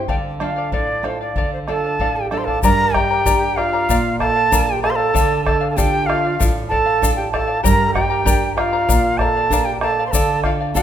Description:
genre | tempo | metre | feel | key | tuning
andean folk, Andean ensemble | 96 BPM | 2/4 | straight | D minor | A4 = 441 Hz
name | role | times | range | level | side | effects
charango | accompaniment | 0.0-10.8 s | G4 to Bb5 | -23 LUFS | left 6 dB | none
nylon-string guitar | accompaniment | 0.0-10.8 s | G2 to Bb4 | -24 LUFS | right 4 dB | none
reedy quena | melody | 0.1-10.8 s | C5 to C6 | -20 LUFS | equal | none
bombo | percussion | 0.1-10.8 s | none | -22 LUFS | left 1 dB | none
mellow large quena | second line | 1.7-10.8 s | F4 to C5 | -24 LUFS | right 4 dB | none
egg shaker | percussion | 2.6-10.8 s | none | -26 LUFS | left 7 dB | none
room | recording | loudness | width
moderate recital hall reverb, RT60 1.5 s | minimal, uncompressed stereo recording | -15 LUFS | side -10 dB against mid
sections
0.0-2.6 A section; 2.6-10.8 B section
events
speeding up 0.0-10.8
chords
0.1 Dm; 2.6 Gm; 3.9 Bb; 5.1 Dm; 7.6 Gm; 8.9 Bb; 10.1 Dm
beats
| 0.09 0.73 | 1.36 2.00 | 2.63 3.26 | 3.89 4.52 | 5.15 5.77 | 6.40 7.02 | 7.65 8.27 | 8.89 9.51 | 10.13 10.75

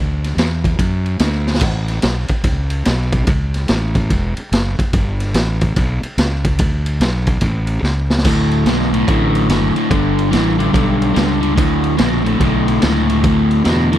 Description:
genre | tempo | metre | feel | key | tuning
blues rock power trio and southern rock | 144 BPM | 4/4 | swing 64% on 8ths | D major | A4 = 440 Hz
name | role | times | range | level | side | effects
fuzz fingered electric bass | bass | 0.0-14.0 s | E1 to F#2 | -18 LUFS | equal | overdrive
raw garage drum kit | drums | 0.2-14.0 s | crash cymbal, kick drum, ride cymbal, snare drum | -18 LUFS | equal | none
crunchy overdriven guitar | riff | 8.2-14.0 s | D2 to E3 | -15 LUFS | left 1 dB | none
room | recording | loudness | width
small room ambience | dry, close 1970s-style studio recording | -14 LUFS | side -12 dB against mid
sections
0.0-8.3 A section; 8.3-14.0 B section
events
drum fill 1.4, 7.8-8.3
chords
0.0 D; 1.6 A; 4.9 G; 6.6 Bm; 7.4 A; 8.3 D; 9.9 G; 11.6 D5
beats
0.38 0.80 1.21 | 1.63 2.05 2.46 2.88 | 3.29 3.71 4.12 4.53 | 4.95 5.36 5.77 6.19 | 6.60 7.01 7.43 7.84 | 8.26 8.67 9.08 9.50 | 9.91 10.33 10.74 11.16 | 11.58 11.99 12.41 12.83 | 13.24 13.66

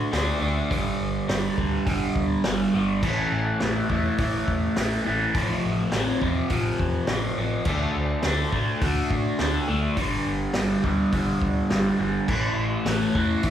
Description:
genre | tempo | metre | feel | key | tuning
garage rock duo or trio | 104 BPM | 4/4 | straight | unclear | A4 = 440 Hz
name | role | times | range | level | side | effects
crunchy overdriven guitar | riff | 0.0-13.5 s | F2 to D4 | -24 LUFS | equal | phaser
hollow-body short-scale picked electric bass | bass | 0.0-13.5 s | G1 to A2 | -29 LUFS | equal | none
vintage drum kit | drums | 0.1-13.5 s | crash cymbal, hi-hat, kick drum, snare drum | -29 LUFS | equal | none
room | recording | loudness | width
light reverb | band playing live in one room | -22 LUFS | side -10 dB against mid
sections
0.0-13.5 A section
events
none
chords
0.0 D5; 0.7 G5; 3.0 A5; 5.3 F/A; 7.7 D5; 10.0 G5; 12.3 A5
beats
0.13 | 0.71 1.29 1.87 2.45 | 3.03 3.61 4.19 4.77 | 5.35 5.93 6.50 7.08 | 7.66 8.24 8.82 9.39 | 9.97 10.55 11.13 11.71 | 12.29 12.87 13.45

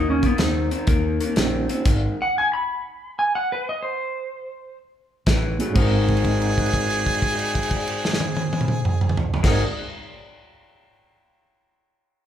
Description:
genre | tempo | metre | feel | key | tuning
electric blues shuffle | 123 BPM | 4/4 | swing 68% on 8ths | Ab mixolydian | A4 = 440 Hz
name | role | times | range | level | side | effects
clean lap steel guitar | melody | 0.0-9.6 s | Cb4 to Cb6 | -25 LUFS | left 2 dB | none
electric guitar through a small old amp | riff | 0.0-2.2, 5.3-9.6 s | Ab2 to Bb4 | -28 LUFS | left 1 dB | none
vintage muted fingered electric bass | bass | 0.0-2.1, 5.3-9.6 s | Ab1 to Eb2 | -26 LUFS | equal | none
natural country drum kit | drums | 0.2-2.0, 5.3-9.5 s | crash cymbal, hi-hat, kick drum, snare drum, toms | -22 LUFS | equal | none
reed electric piano | accompaniment | 1.4-1.9, 5.6-9.8 s | Ab2 to Gb6 | -28 LUFS | right 2 dB | fast tremolo
clear harmonica | second line | 5.8-9.6 s | Ab4 | -27 LUFS | right 2 dB | none
room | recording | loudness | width
moderate large studio reverb, RT60 1.4 s | band playing live in one room | -19 LUFS | side -10 dB against mid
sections
0.0-5.8 A section; 5.8-9.7 B section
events
stop 1.9-5.3; held note 5.8-9.4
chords
0.0 Eb9; 1.9 Ab; 5.3 A5; 5.8 Ab9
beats
0.39 0.88 1.36 | 1.85 2.34 2.83 3.32 | 3.80 4.29 4.78 5.27 | 5.76 6.24 6.73 7.22 | 7.71 8.20 8.69 9.17

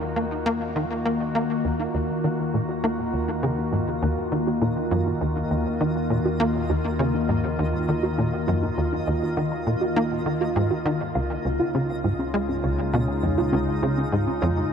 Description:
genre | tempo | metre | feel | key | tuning
ambient, sequencer-driven space music | 101 BPM | 4/4 | straight | Eb minor | A4 = 440 Hz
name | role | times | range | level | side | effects
evolving wavetable pad | sustained chords | 0.0-14.7 s | Db3 to Gb4 | -26 LUFS | left 1 dB | chorus, built-in reverb
tight sequencer bass | riff | 0.0-14.7 s | Db2 to Bb3 | -25 LUFS | equal | ensemble chorus, tape echo
analog drone | bass | 0.0-14.7 s | Db2 to Eb2 | -33 LUFS | equal | chorus
twinkling granular texture | texture | 2.8-14.7 s | Eb4 to Eb5 | -39 LUFS | right 2 dB | built-in reverb
warbly dusty pluck | arpeggios | 1.8-14.5 s | Db4 to Bb5 | -31 LUFS | moving between left 1 dB and right 6 dB | none
room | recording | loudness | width
moderate huge ambient reverb, RT60 8.9 s | none | -22 LUFS | side -7 dB against mid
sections
0.0-1.6 A section; 1.6-14.7 B section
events
fade-in on synth texture 1.6-14.7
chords
0.0 Ebm; 11.2 Db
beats
0.46 1.05 | 1.65 2.24 2.84 3.43 | 4.02 4.62 5.21 5.81 | 6.40 6.99 7.59 8.18 | 8.78 9.37 9.96 10.56 | 11.15 11.75 12.34 12.94 | 13.53 14.12 14.72

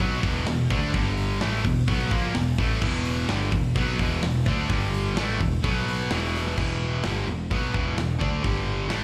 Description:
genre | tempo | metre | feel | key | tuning
hard rock | 128 BPM | 4/4 | straight | unclear | A4 = 440 Hz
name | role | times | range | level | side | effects
distorted electric guitar | riff | 0.0-9.0 s | E2 to D4 | -30 LUFS | equal | overdrive, slapback echo
distorted electric guitar | riff | 0.0-9.0 s | E2 to D4 | -37 LUFS | equal | distortion, slapback echo
distorted electric guitar | riff | 0.0-6.6 s | E2 to D4 | -36 LUFS | equal | none
picked electric bass | bass | 0.0-9.0 s | E1 to D2 | -31 LUFS | equal | none
tight metal drum kit | drums | 0.0-9.0 s | crash cymbal, hi-hat, kick drum, snare drum | -31 LUFS | equal | none
room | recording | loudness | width
light reverb | live gig heard through the venue's PA, club reverb | -25 LUFS | mono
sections
0.0-6.6 A section; 6.6-9.0 B section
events
none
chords
0.0 E5; 0.9 G5; 1.4 E5; 4.7 G5; 5.2 E5; 5.6 B5; 6.1 E5; 8.4 G5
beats
0.00 0.47 | 0.94 1.41 1.87 2.34 | 2.81 3.28 3.75 4.22 | 4.69 5.16 5.62 6.09 | 6.56 7.03 7.50 7.97 | 8.44 8.91

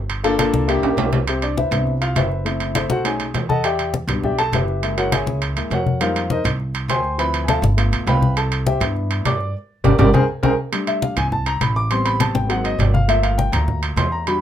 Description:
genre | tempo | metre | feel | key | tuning
Afro-Cuban jazz | 203 BPM | 4/4 | straight | unclear | A4 = 440 Hz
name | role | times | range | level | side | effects
upright bass | bass | 0.0-14.4 s | F#1 to G2 | -22 LUFS | right 1 dB | none
congas | percussion | 0.1-14.4 s | none | -22 LUFS | left 3 dB | none
timbales | percussion | 0.1-14.4 s | none | -24 LUFS | right 7 dB | none
warm grand piano | accompaniment | 0.2-14.4 s | F3 to D6 | -21 LUFS | left 2 dB | none
room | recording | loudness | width
light reverb | minimal, uncompressed stereo recording | -17 LUFS | side -10 dB against mid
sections
0.0-1.3 A section; 1.3-10.7 A section; 10.7-14.4 A section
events
drum fill 0.8-1.3, 10.3-10.7; grand piano solo 1.3-14.4; band accent 9.5-10.7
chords
0.1 Gm7; 0.7 C7; 1.3 Cmaj7; 2.5 F#m7b5; 3.1 B7; 3.6 Em7; 4.8 F#9; 6.0 Fm11; 7.2 Dm9; 7.8 G7; 8.4 Cmaj7; 9.5 Gm; 10.1 Abadd9/C; 10.7 Am11; 11.9 Am9; 12.5 Ab9; 13.1 Gm7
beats
| 0.10 0.39 0.69 0.98 | 1.28 1.57 1.87 2.16 | 2.46 2.75 3.05 3.35 | 3.64 3.94 4.23 4.53 | 4.83 5.12 5.42 5.71 | 6.01 6.30 6.60 6.89 | 7.19 7.48 7.78 8.07 | 8.37 8.66 8.96 9.25 | 9.55 9.84 10.14 10.43 | 10.73 11.02 11.32 11.61 | 11.91 12.20 12.50 12.79 | 13.09 13.38 13.68 13.97 | 14.27

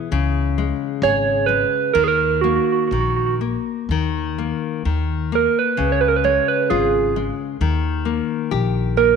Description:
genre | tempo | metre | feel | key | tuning
fado-style ballad | 61-67 BPM | 2/4 | rubato | unclear | A4 = 441 Hz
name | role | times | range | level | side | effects
nylon-string guitar | accompaniment | 0.0-9.2 s | C#3 to G#4 | -23 LUFS | left 12 dB | none
upright bass | bass | 0.1-9.1 s | G#1 to D#2 | -23 LUFS | left 1 dB | none
soft struck synth lead | melody | 1.0-9.2 s | F#4 to C#5 | -18 LUFS | right 9 dB | chorus
room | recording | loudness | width
moderate plate reverb, RT60 2.5 s | 1960s-style stereo with parts hard left and right | -17 LUFS | side -6 dB against mid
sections
0.0-9.2 A section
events
none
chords
0.1 C#5; 2.0 D#5; 5.8 C#; 7.6 D#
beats
| 0.11 1.02 | 1.95 2.91 | 3.89 4.85 | 5.78 6.70 | 7.60 8.51

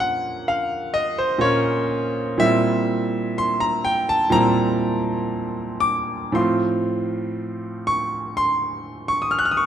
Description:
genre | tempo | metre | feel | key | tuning
classical, romantic nocturne for solo piano | 58-66 BPM | 4/4 | rubato | unclear | A4 = 440 Hz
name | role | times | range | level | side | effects
bright concert grand piano | solo | 0.0-9.7 s | A2 to Gb6 | -19 LUFS | equal | none
room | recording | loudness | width
moderate recital hall reverb, RT60 1.9 s | close, detailed microphones | -19 LUFS | side -9 dB against mid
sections
0.0-9.7 A section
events
none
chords
0.0 Bbm; 2.4 C7/Bb; 6.4 F/A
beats
0.52 1.45 | 2.44 3.42 4.37 5.35 | 6.37 7.39 8.38 9.36

